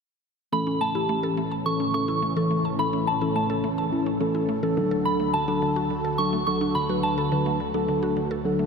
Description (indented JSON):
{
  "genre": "pop",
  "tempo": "106 BPM",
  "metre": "4/4",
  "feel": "straight",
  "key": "unclear",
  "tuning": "A4 = 440 Hz",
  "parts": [
    { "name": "soft synth bell", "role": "melody", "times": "0.5-8.1 s", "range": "A5 to C#6", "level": "-28 LUFS", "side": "right 1 dB", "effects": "chorus, phaser, tape echo" },
    { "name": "mellow tine electric piano", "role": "accompaniment", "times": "0.5-8.6 s", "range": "E3 to B4", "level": "-26 LUFS", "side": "left 2 dB", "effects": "slow stereo tremolo" },
    { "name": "string machine, cellos", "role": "sustained chords", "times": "0.5-8.7 s", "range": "D2 to A4", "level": "-28 LUFS", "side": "equal", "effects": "ensemble chorus" },
    { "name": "mallet-like synth pluck", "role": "arpeggios", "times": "0.5-8.7 s", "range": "D3 to A5", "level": "-32 LUFS", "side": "right 3 dB", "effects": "chorus, tape echo" }
  ],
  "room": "wet huge ambient reverb, RT60 3.9 s",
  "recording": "dreamy mix soaked in reverb",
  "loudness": "-22 LUFS",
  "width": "side -5 dB against mid",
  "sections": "0.5-8.7 A section",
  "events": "none",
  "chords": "0.5 A; 4.8 D",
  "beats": "| 0.53 1.09 1.66 2.22 | 2.79 3.36 3.92 4.49 | 5.05 5.62 6.19 6.75 | 7.32 7.88 8.45"
}